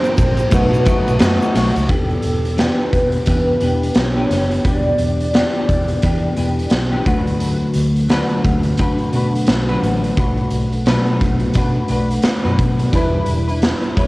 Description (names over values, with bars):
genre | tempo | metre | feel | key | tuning
indie pop, bedroom pop | 87 BPM | 4/4 | swing 60% on 16ths | unclear | A4 = 440 Hz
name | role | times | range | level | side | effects
warbly nostalgic lead | melody | 0.0-7.1, 14.0-14.1 s | A4 to D5 | -22 LUFS | equal | ensemble chorus, tape echo
clean electric guitar | accompaniment | 0.0-14.1 s | B2 to B4 | -20 LUFS | left 1 dB | ensemble chorus, vibrato effect, cassette tape
mellow tine electric piano | accompaniment | 0.0-1.9, 12.9-14.1 s | G3 to B4 | -24 LUFS | right 2 dB | medium stereo tremolo, cassette tape
ensemble organ-string | sustained chords | 0.0-1.9 s | B4 to D#6 | -29 LUFS | right 1 dB | ensemble chorus, cassette tape
raw garage drum kit | drums | 0.0-14.1 s | hi-hat, kick drum, ride cymbal, snare drum | -18 LUFS | equal | cassette tape
egg shaker | percussion | 0.0-1.9 s | none | -43 LUFS | right 3 dB | none
vintage muted fingered electric bass | bass | 0.2-14.1 s | E1 to D3 | -20 LUFS | equal | none
room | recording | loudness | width
moderate booth ambience, RT60 0.2 s | home recording on cassette | -14 LUFS | side -20 dB against mid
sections
0.0-1.9 A section; 1.9-12.9 B section; 12.9-14.1 C section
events
none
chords
0.0 Bb69; 0.5 B7; 1.9 Em7; 7.1 D6; 10.2 Bm7; 12.9 Em7